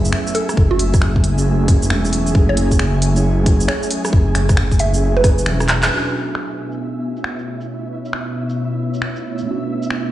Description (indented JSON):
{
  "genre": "future garage",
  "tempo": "135 BPM",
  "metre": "4/4",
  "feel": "swing 64% on 16ths",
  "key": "unclear",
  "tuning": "A4 = 440 Hz",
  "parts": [
    { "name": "muted felt-like synth keys", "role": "accompaniment", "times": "0.0-10.1 s", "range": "B2 to G#4", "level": "-25 LUFS", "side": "right 2 dB", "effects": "chorus, sidechain pumping, dub echo" },
    { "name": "airy breathy pad", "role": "sustained chords", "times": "0.0-10.1 s", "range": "B2 to E5", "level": "-25 LUFS", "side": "right 1 dB", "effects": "chorus, phaser, vintage 12-bit sampler grit, sidechain pumping" },
    { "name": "swelling detuned saw bass", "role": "bass", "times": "0.0-5.9 s", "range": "E1 to F#1", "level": "-17 LUFS", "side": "equal", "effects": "tube saturation, sidechain pumping" },
    { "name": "organic electronic drum kit", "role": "drums", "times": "0.0-10.0 s", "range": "finger snaps, handclaps, hi-hat, rim click, shaker", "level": "-23 LUFS", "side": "equal", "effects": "low-pass filter on perc, low-pass filter on snare, low-pass filter on hats" },
    { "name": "flickering grainy texture", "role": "texture", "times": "0.0-10.1 s", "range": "E4 to G#5", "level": "-31 LUFS", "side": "equal", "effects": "built-in reverb" },
    { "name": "mallet-like synth pluck", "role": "melody", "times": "0.3-5.3 s", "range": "F#4 to E5", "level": "-23 LUFS", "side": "right 2 dB", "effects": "chorus, phaser, dub echo" },
    { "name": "electronic kick drum", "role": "drums", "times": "0.6-5.4 s", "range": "none", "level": "-14 LUFS", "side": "equal", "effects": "none" }
  ],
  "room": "light reverb",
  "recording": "played on a big sound system in a bare room, stone room reverb, nothing above 11.0 kHz",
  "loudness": "-15 LUFS",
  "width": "side -14 dB against mid",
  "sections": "0.0-5.9 A section; 5.9-10.1 B section",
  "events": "drum fill 5.7; band accent 5.8; filter sweep on analog synth pad 5.9-10.1",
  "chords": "0.0 F#m9; 5.9 Bm7",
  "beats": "0.13 | 0.57 1.02 1.46 1.91 | 2.35 2.80 3.24 3.69 | 4.13 4.57 5.02 5.46 | 5.91 6.35 6.80 7.24 | 7.68 8.13 8.57 9.02 | 9.46 9.91"
}